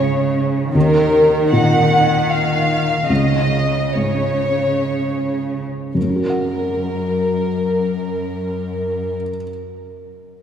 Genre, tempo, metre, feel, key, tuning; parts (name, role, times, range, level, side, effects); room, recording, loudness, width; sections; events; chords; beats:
cinematic, emotional film score for orchestra; 55-84 BPM; 3/4; rubato; F# major; A4 = 438 Hz
dark studio violin section; melody; 0.0-9.2 s; A#4 to F#5; -19 LUFS; equal
felt-muted upright piano; accompaniment; 0.0-10.4 s; C#2 to F#5; -21 LUFS; equal
warm studio cello section; bass; 0.0-9.2 s; F#2 to D#3; -21 LUFS; equal
wet church reverb, RT60 3.5 s; recorded in a church or concert hall; -15 LUFS; side -8 dB against mid
0.0-6.0 A section; 6.0-9.0 B section
slowing down 0.0-6.0
0.0 C#5; 0.8 D#m; 3.1 C#5; 6.0 F#
0.03 | 0.75 1.53 2.30 | 3.10 3.96 4.90 | 5.96 7.00 8.01